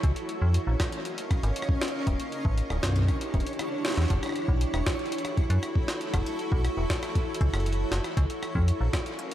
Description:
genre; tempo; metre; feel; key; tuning
IDM; 118 BPM; 4/4; straight; F# phrygian; A4 = 439 Hz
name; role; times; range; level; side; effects
granular cloud pad; sustained chords; 0.0-9.3 s; C#4 to E#5; -32 LUFS; equal; built-in reverb
metallic FM bass; bass; 0.0-8.9 s; D1 to F#2; -26 LUFS; equal; none
electronic kick drum; drums; 0.0-9.0 s; none; -27 LUFS; equal; none
jungle sampler-style drum kit; drums; 0.0-9.3 s; hi-hat, rim click, snare drum; -34 LUFS; equal; digital delay
backwards swelling texture; texture; 0.0-9.3 s; C#5; -40 LUFS; right 1 dB; built-in reverb
room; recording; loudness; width
light reverb, digital ambience; none; -25 LUFS; side -12 dB against mid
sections
0.0-9.3 A section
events
none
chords
0.0 C#69; 2.1 Em7; 4.1 F#m7; 8.2 C#69

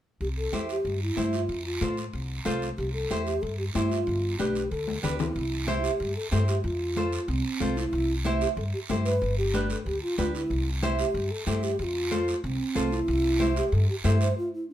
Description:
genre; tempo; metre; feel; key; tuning
latin, cumbia; 186 BPM; 4/4; straight; C major; A4 = 440 Hz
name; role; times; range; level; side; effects
breathy bass ocarina; melody; 0.2-14.7 s; C4 to C5; -29 LUFS; equal; none
upright bass; bass; 0.2-14.3 s; G1 to A2; -29 LUFS; equal; none
congas; percussion; 0.2-14.2 s; none; -34 LUFS; left 5 dB; none
guiro; percussion; 0.2-14.4 s; none; -39 LUFS; right 4 dB; none
nylon-string guitar; accompaniment; 0.5-14.3 s; D4 to C5; -32 LUFS; right 4 dB; none
room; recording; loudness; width
light reverb; minimal, uncompressed stereo recording; -25 LUFS; side -12 dB against mid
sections
0.2-5.4 A section; 5.4-14.7 B section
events
drum fill 4.9-5.4; stop 14.4-14.7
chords
0.2 C; 1.5 F; 2.8 C; 4.1 G7; 5.4 C; 6.6 F; 7.9 C; 9.2 G; 10.5 C; 11.8 F; 13.1 C

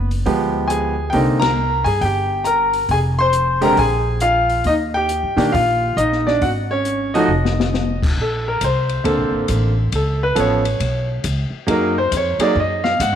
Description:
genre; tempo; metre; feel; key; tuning
jazz piano trio; 137 BPM; 4/4; swing 65% on 8ths; Eb major; A4 = 437 Hz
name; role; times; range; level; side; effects
clear grand piano; melody; 0.0-13.2 s; D3 to C6; -17 LUFS; equal; none
upright bass; bass; 0.0-13.2 s; F1 to Bb2; -21 LUFS; equal; none
open jazz drum kit; drums; 0.1-13.1 s; crash cymbal, hi-hat, kick drum, ride cymbal, snare drum; -26 LUFS; left 4 dB; none
room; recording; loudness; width
moderate plate reverb, RT60 2.1 s; 1960s-style stereo; -16 LUFS; side -9 dB against mid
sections
0.0-8.2 A section; 8.2-13.2 B section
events
band accent 1.4; drum fill 7.3-7.7; grand piano solo 8.2-13.2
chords
0.0 G7b9; 1.1 C7(no3); 2.9 Fm; 3.8 Bb5; 4.7 Ebmaj7; 6.4 Ab5; 7.3 Ebsus2/F; 8.2 Bbmaj9; 9.9 Db7(#5, no3); 11.7 Gb69

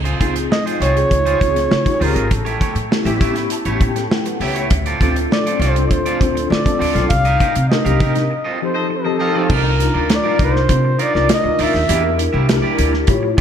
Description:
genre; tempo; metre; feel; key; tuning
polished 1980s jazz-funk pop; 100 BPM; 4/4; straight; unclear; A4 = 440 Hz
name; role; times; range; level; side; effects
electric guitar at the edge of break-up; riff; 0.0-13.4 s; A3 to F5; -24 LUFS; right 4 dB; lush chorus, slapback echo
upright bass; bass; 0.0-13.3 s; Ab1 to D3; -19 LUFS; equal; none
modern studio drum kit; drums; 0.1-13.4 s; crash cymbal, hi-hat, kick drum, snare drum; -19 LUFS; equal; none
mellow tine electric piano; accompaniment; 0.2-13.4 s; F3 to C#6; -21 LUFS; left 2 dB; medium stereo tremolo, ensemble chorus, slapback echo
mellow flugelhorn; melody; 0.5-12.2 s; A4 to F5; -20 LUFS; equal; slapback echo, digital delay
clear horn section; second line; 8.7-9.6 s; Bb3 to Eb5; -25 LUFS; left 1 dB; slapback echo
room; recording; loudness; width
light reverb, small room ambience; none; -14 LUFS; side -8 dB against mid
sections
0.0-9.5 A section; 9.5-13.4 B section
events
tine electric piano fill 2.9-4.7; band accent 7.1-9.5; break 8.3-9.5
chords
0.0 Dbmaj7; 2.3 A7; 4.7 Dm7; 7.1 Cm7; 8.3 F7; 9.5 Cm11; 11.9 Em7b5

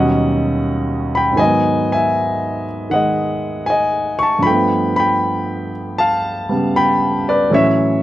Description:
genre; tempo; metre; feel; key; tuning
solo jazz; 78 BPM; 4/4; swing 69% on 8ths; unclear; A4 = 440 Hz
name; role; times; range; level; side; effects
warm concert grand piano; solo; 0.0-8.0 s; D#2 to C#6; -14 LUFS; equal; none
room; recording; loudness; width
light reverb; dry, close 1970s-style studio recording; -14 LUFS; side -14 dB against mid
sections
0.0-8.0 A section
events
none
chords
0.0 D#7alt; 1.4 G#m7; 4.4 G9; 7.5 A6

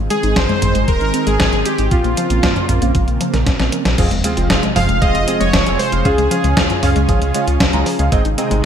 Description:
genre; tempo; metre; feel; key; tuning
synthwave; 116 BPM; 4/4; straight; F minor; A4 = 440 Hz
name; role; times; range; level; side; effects
analog string pad; sustained chords; 0.0-8.7 s; C3 to Ab4; -22 LUFS; right 3 dB; ensemble chorus, sidechain pumping
warbly dusty pluck; arpeggios; 0.0-8.6 s; Eb3 to Bb4; -24 LUFS; left 3 dB; chorus, ping-pong delay
round analog bass; bass; 0.0-8.6 s; Eb1 to Db2; -18 LUFS; equal; tube saturation
soft supersaw; melody; 0.1-7.0 s; F4 to F5; -20 LUFS; equal; ping-pong delay
detuned 8-bit digital drum machine; drums; 0.1-8.6 s; crash cymbal, hi-hat, snare drum, toms; -19 LUFS; equal; studio reverb, gated reverb
electronic kick drum; drums; 0.4-8.2 s; none; -19 LUFS; equal; studio reverb
clear electric grand piano; stabs; 4.0-8.6 s; C4 to Bb5; -22 LUFS; right 2 dB; ensemble chorus, ping-pong delay
sub drop; sound effects; 4.0-6.1 s; none; -27 LUFS; equal; none
room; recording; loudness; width
light reverb; bright 1980s-style digital production; -13 LUFS; side -8 dB against mid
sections
0.0-4.0 A section; 4.0-8.7 B section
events
drum fill 3.5-4.0; impact 4.0-6.1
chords
0.0 Ab; 1.9 Bbmadd9; 4.0 Fm; 6.1 Db; 8.1 Ab

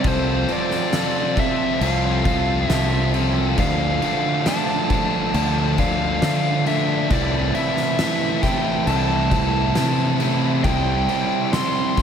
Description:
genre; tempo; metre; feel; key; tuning
post-rock; 68 BPM; 4/4; straight; unclear; A4 = 440 Hz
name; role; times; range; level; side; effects
overdriven electric guitar; melody; 0.0-12.0 s; C5 to C6; -24 LUFS; left 1 dB; diffuse ambient delay
distorted electric guitar; riff; 0.0-12.0 s; C3 to A4; -26 LUFS; left 10 dB; overdrive
sludgy distorted guitar; riff; 0.0-12.0 s; C3 to A4; -23 LUFS; right 6 dB; overdrive
growling fingered electric bass; bass; 0.0-11.0 s; C2 to D3; -22 LUFS; left 1 dB; overdrive
oversized low-tuned drum kit; drums; 0.0-12.0 s; crash cymbal, kick drum, snare drum; -25 LUFS; left 1 dB; none
room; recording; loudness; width
moderate lush hall reverb, RT60 2.8 s; dreamy mix soaked in reverb; -18 LUFS; side -8 dB against mid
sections
0.0-12.0 A section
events
none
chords
0.0 F/C; 3.6 Dm; 7.1 Am/C; 10.6 C

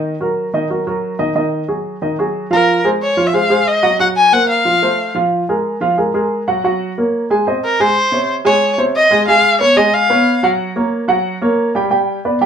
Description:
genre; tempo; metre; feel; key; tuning
jazz; 182 BPM; 4/4; straight; Db major from 8.0 s; A4 = 440 Hz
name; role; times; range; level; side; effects
warm baby grand piano; accompaniment; 0.0-12.5 s; C3 to Ab5; -15 LUFS; right 2 dB; none
warm erhu; melody; 2.5-5.1, 7.6-10.4 s; Bb4 to Ab5; -12 LUFS; left 2 dB; none
room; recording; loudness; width
wet studio reverb, RT60 0.5 s; band playing live in one room; -12 LUFS; side -8 dB against mid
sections
0.0-8.0 A section; 8.0-12.5 B section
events
none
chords
0.0 Ebm; 1.4 Ab5; 2.7 Fm7; 4.0 Gbmaj9#11; 4.7 F; 5.3 Bb5; 6.6 Gb; 7.3 Ab; 8.0 Db5; 9.3 Db7; 10.6 Gb; 11.9 G

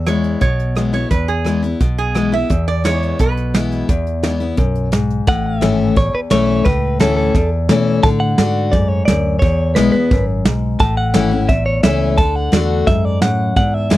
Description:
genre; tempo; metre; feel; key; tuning
honky-tonk and classic country; 174 BPM; 4/4; straight; A major; A4 = 438 Hz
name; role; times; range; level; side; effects
lap resonator guitar; second line; 0.0-4.9 s; G#4 to E5; -22 LUFS; right 5 dB; none
picked steel-string acoustic guitar; accompaniment; 0.0-14.0 s; E2 to F#4; -18 LUFS; left 4 dB; none
vintage muted fingered electric bass; bass; 0.0-14.0 s; G#1 to B2; -19 LUFS; right 1 dB; none
soft brush drum kit; drums; 0.1-14.0 s; hi-hat, kick drum, rim click, snare drum; -16 LUFS; right 1 dB; none
direct-recorded clean electric guitar; melody; 5.3-14.0 s; A4 to A5; -20 LUFS; right 1 dB; none
room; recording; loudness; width
little or no reverb; dry, close 1970s-style studio recording; -13 LUFS; side -15 dB against mid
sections
0.0-5.3 A section; 5.3-14.0 B section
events
resonator guitar played with a steel bar solo 0.0-5.3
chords
0.0 E; 5.3 A; 8.0 D; 9.4 E; 10.8 A; 12.2 D

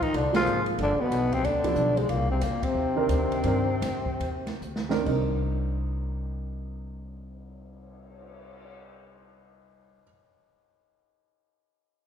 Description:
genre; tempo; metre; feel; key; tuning
jazz, small-group swing and bop; 129-185 BPM; 4/4; swing 63% on 8ths; C minor; A4 = 440 Hz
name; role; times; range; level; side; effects
growling tenor saxophone; melody; 0.0-4.6 s; Ab3 to F4; -27 LUFS; left 2 dB; none
trombone with plunger mute; second line; 0.0-4.6 s; Ab2 to F3; -32 LUFS; right 2 dB; none
upright bass; bass; 0.0-10.0 s; G1 to G2; -30 LUFS; equal; none
open jazz drum kit; drums; 0.0-8.7 s; crash cymbal, cymbal swell, hi-hat, kick drum, ride cymbal, snare drum; -36 LUFS; right 1 dB; none
dark baby grand piano; accompaniment; 0.3-10.0 s; C3 to Bb4; -31 LUFS; right 4 dB; none
room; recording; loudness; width
wet recital hall reverb, RT60 1.7 s; recorded in a church or concert hall; -24 LUFS; side -8 dB against mid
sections
0.0-5.1 A section; 5.1-8.8 B section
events
band accent 0.3, 2.6; slowing down 2.1-5.1; drum fill 4.6-5.1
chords
0.0 Ab69; 0.8 G7; 2.1 Cm9

